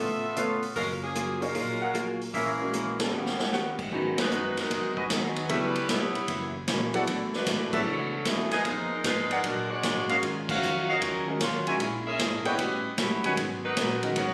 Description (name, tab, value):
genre	jazz, big band swing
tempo	152 BPM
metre	4/4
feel	swing 67% on 8ths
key	unclear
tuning	A4 = 442 Hz
part	clear saxophone section	melody	0.0-14.3 s	C#3 to E#5	-33 LUFS	equal	plate reverb
part	archtop guitar, miked and amplified	accompaniment	0.0-14.3 s	F#2 to G#4	-35 LUFS	equal	none
part	upright bass	bass	0.0-14.3 s	F#1 to A#2	-43 LUFS	equal	none
part	mellow trumpet section	stabs	0.4-13.3 s	F#4 to G#5	-32 LUFS	equal	none
part	swinging big-band drum kit	drums	0.4-14.3 s	crash cymbal, hi-hat, kick drum, ride cymbal, snare drum	-34 LUFS	equal	none
part	warm baby grand piano	accompaniment	1.4-14.2 s	D#3 to C#5	-35 LUFS	equal	none
room	moderate large studio reverb, RT60 0.8 s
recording	recorded on a phone in the room, studio reverb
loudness	-28 LUFS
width	mono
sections	0.0-3.9 A section; 3.9-14.3 B section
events	band accent 2.9, 4.1, 7.7, 10.4; drum fill 3.1-3.5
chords	0.0 C#7alt; 0.8 F#maj9; 2.3 A#m7b5; 3.1 D#7alt; 3.9 G#m7; 5.5 C#m7b5; 6.3 F#7; 7.1 Bm11; 8.6 Fm7b5; 9.4 A#7alt; 10.2 D#m9; 11.8 A#m7b5; 12.6 A13; 13.4 G#m11